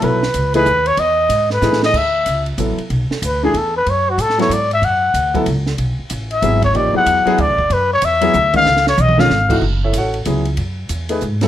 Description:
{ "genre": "modal jazz", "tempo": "188 BPM", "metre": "3/4", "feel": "swing 63% on 8ths", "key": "B dorian", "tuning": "A4 = 442 Hz", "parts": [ { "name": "breathy trumpet", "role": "melody", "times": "0.0-9.6 s", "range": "F#4 to F#5", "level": "-15 LUFS", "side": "left 1 dB", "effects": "plate reverb" }, { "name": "warm baby grand piano", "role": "accompaniment", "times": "0.0-11.5 s", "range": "D#3 to F#5", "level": "-19 LUFS", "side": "equal", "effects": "none" }, { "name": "upright bass", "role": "bass", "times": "0.0-11.5 s", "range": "F#1 to A2", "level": "-20 LUFS", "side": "equal", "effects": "none" }, { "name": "compact cocktail drum kit", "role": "drums", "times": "0.0-11.5 s", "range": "crash cymbal, hi-hat, kick drum, ride cymbal, snare drum, toms", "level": "-25 LUFS", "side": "right 3 dB", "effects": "none" } ], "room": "moderate studio reverb, RT60 0.5 s", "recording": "none", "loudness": "-13 LUFS", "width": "side -11 dB against mid", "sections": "0.0-1.9 A section; 1.9-9.6 A section; 9.6-11.5 A section", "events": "trumpet solo 0.0-9.6; drum fill 1.6-1.9, 8.7-9.3", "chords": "0.0 E5; 1.9 Bm11; 5.8 Dadd9; 8.7 C#7; 9.6 F#m9" }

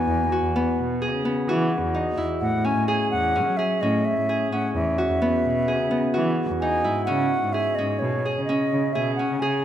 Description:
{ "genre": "contemporary instrumental, chamber music in an uneven meter", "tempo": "128 BPM", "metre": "5/4", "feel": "straight", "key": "E major", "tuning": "A4 = 438 Hz", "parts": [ { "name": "baroque flute", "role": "melody", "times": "0.0-9.6 s", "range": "C#5 to G#5", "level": "-25 LUFS", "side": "equal", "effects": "none" }, { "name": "Celtic harp", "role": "arpeggios", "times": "0.0-9.6 s", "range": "B3 to G#4", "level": "-24 LUFS", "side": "equal", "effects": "none" }, { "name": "muted cello", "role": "bass", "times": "0.1-9.6 s", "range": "E2 to F#3", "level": "-26 LUFS", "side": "equal", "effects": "none" } ], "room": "moderate concert hall reverb, RT60 2.3 s", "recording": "none", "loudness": "-21 LUFS", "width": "side -10 dB against mid", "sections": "0.0-7.1 A section; 7.1-9.6 B section", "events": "none", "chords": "0.0 Emaj9; 2.4 Amaj7; 4.7 Emaj9; 7.1 C#sus2" }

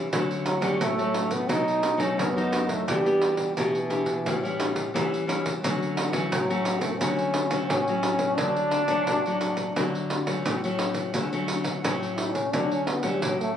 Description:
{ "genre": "samba and choro", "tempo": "87 BPM", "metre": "4/4", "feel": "straight", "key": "D major", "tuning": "A4 = 441 Hz", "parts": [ { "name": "nylon-string guitar", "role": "accompaniment", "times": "0.0-13.6 s", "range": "F#2 to G4", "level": "-27 LUFS", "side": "left 4 dB", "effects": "none" }, { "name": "pandeiro", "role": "percussion", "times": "0.1-13.6 s", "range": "none", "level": "-29 LUFS", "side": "right 3 dB", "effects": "none" }, { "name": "warm trombone", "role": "second line", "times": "0.5-13.5 s", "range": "D3 to E4", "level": "-26 LUFS", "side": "right 1 dB", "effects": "none" } ], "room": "moderate large studio reverb, RT60 1.1 s", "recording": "recorded on a phone in the room, club reverb, compression", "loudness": "-23 LUFS", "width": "side -9 dB against mid", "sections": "0.0-11.1 A section; 11.1-13.6 B section", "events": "trombone solo 0.0-11.1, 11.1-13.6", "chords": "0.1 Dmaj7; 1.5 B7; 2.9 Em7; 4.2 A7; 5.6 Dmaj7" }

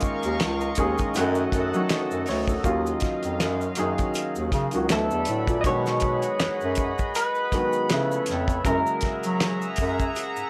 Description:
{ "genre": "R&B, neo-soul", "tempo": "80 BPM", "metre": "4/4", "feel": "swing 56% on 16ths", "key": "unclear", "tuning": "A4 = 437 Hz", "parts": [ { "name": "warm upright piano", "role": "accompaniment", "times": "0.0-10.5 s", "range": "Db3 to Eb5", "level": "-31 LUFS", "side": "equal", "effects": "plate reverb" }, { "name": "chorused pulse-width pad", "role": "sustained chords", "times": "0.0-10.5 s", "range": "Gb3 to Db6", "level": "-34 LUFS", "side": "equal", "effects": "none" }, { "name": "cloth-damped thuddy drum kit", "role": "drums", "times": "0.0-10.3 s", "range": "hi-hat, kick drum, snare drum", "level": "-30 LUFS", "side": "equal", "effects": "none" }, { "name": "egg shaker and finger snaps", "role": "percussion", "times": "0.0-10.5 s", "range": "none", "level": "-39 LUFS", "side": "equal", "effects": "none" }, { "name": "mellow bass clarinet", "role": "bass", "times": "0.2-10.4 s", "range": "Db2 to Gb3", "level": "-29 LUFS", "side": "equal", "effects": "none" }, { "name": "electric guitar through a small old amp", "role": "melody", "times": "4.9-10.5 s", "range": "A4 to Eb5", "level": "-30 LUFS", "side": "equal", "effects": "lush chorus, plate reverb" } ], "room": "light reverb", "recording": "none", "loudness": "-25 LUFS", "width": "mono", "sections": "0.0-5.6 A section; 5.6-10.5 B section", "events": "none", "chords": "0.0 Db69; 1.1 Gbm6; 2.6 Ebm9; 4.9 D69; 5.6 Cb6; 7.9 Db7alt; 8.6 Gb9" }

